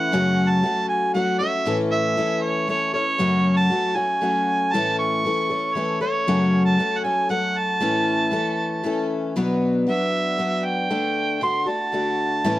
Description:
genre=rock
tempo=117 BPM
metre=3/4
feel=straight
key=A major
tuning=A4 = 440 Hz
part: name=mellow harmonica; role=melody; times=0.0-12.6 s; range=C#5 to C#6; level=-22 LUFS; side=right 2 dB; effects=none
part: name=picked twelve-string acoustic guitar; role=accompaniment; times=0.0-12.6 s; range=F#2 to A4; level=-22 LUFS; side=left 2 dB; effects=none
room=light reverb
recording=none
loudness=-19 LUFS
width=side -15 dB against mid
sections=0.0-9.4 A section; 9.4-12.6 B section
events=harmonica solo 9.4-12.6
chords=0.1 F#m; 1.7 A; 3.2 F#m; 4.7 A; 6.3 F#m; 7.8 A; 9.4 Bm; 10.9 D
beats=| 0.11 0.63 1.14 | 1.65 2.17 2.68 | 3.19 3.71 4.22 | 4.73 5.25 5.76 | 6.27 6.79 7.30 | 7.81 8.33 8.84 | 9.35 9.87 10.38 | 10.90 11.41 11.93 | 12.44

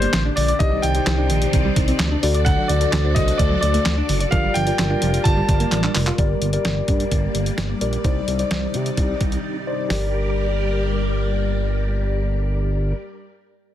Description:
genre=synth-pop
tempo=129 BPM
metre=4/4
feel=straight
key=G minor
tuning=A4 = 441 Hz
part: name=clear concert grand piano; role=melody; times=0.0-5.9 s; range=C5 to A5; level=-24 LUFS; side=left 1 dB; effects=plate reverb, digital delay
part: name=muted felt-like synth keys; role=accompaniment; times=0.0-13.0 s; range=D4 to D5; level=-26 LUFS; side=left 4 dB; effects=chorus, plate reverb
part: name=string machine, cellos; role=sustained chords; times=0.0-12.9 s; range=C3 to D5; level=-27 LUFS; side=equal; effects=phaser, ensemble chorus, plate reverb
part: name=soft round pluck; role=arpeggios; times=0.0-6.1 s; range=D3 to D5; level=-26 LUFS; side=right 2 dB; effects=chorus, plate reverb, digital delay
part: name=smooth gliding synth bass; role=bass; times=0.0-12.9 s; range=F1 to C3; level=-22 LUFS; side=equal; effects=none
part: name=detuned 8-bit digital drum machine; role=drums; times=0.0-10.0 s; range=handclaps, hi-hat, kick drum, snare drum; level=-22 LUFS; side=equal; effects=none
room=moderate studio reverb, RT60 0.5 s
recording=dense, heavily limited modern master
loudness=-18 LUFS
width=side -11 dB against mid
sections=0.0-6.2 A section; 6.2-9.9 B section; 9.9-13.6 C section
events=drum fill 5.7-6.2; break 9.4-9.9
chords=0.0 Gm; 0.6 Cmadd9; 2.2 D; 4.3 Gm7; 6.2 Gm; 8.0 Cmadd9; 9.9 Gm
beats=0.14 | 0.60 1.07 1.53 2.00 | 2.46 2.93 3.39 3.86 | 4.32 4.79 5.25 5.72 | 6.18 6.65 7.11 7.58 | 8.04 8.51 8.97 9.44 | 9.90 10.37 10.83 11.30 | 11.76 12.23 12.69

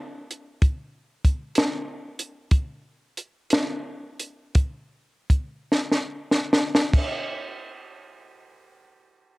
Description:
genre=blues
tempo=46-64 BPM (dotted quarters)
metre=12/8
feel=straight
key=none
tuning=none
part: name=compact cocktail drum kit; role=drums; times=0.3-7.1 s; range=crash cymbal, hi-hat, kick drum, snare drum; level=-21 LUFS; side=equal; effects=cassette tape
room=moderate spring reverb, RT60 1.8 s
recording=home recording on cassette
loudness=-22 LUFS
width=side -23 dB against mid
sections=0.0-6.9 A section; 6.9-9.4 B section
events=slowing down 1.2-6.9; drum fill 5.7-6.9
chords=none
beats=0.62 1.56 | 2.51 3.50 4.55 5.68 | 6.93

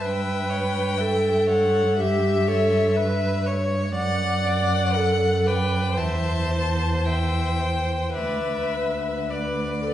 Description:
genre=classical, slow romantic movement for string quartet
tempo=52-62 BPM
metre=4/4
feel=rubato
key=unclear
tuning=A4 = 440 Hz
part: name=rich violin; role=melody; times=0.0-9.9 s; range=D5 to A5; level=-28 LUFS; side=left 5 dB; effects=none
part: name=clear violin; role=second line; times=0.0-9.9 s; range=B4 to F#5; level=-32 LUFS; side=left 2 dB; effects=none
part: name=rich viola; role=accompaniment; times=0.0-9.9 s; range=G4 to D5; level=-25 LUFS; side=right 1 dB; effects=none
part: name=rich cello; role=bass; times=0.0-9.9 s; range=D2 to G2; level=-25 LUFS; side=right 2 dB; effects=none
room=wet recital hall reverb, RT60 1.6 s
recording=heard from further back in the room, nothing above 11.0 kHz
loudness=-20 LUFS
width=side -12 dB against mid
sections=0.0-9.9 A section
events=none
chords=0.0 A7/G; 4.0 D/F#; 6.0 C/E; 8.2 Bmadd11/D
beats=| 0.03 1.00 1.99 2.97 | 3.96 4.95 5.98 7.04 | 8.16 9.30

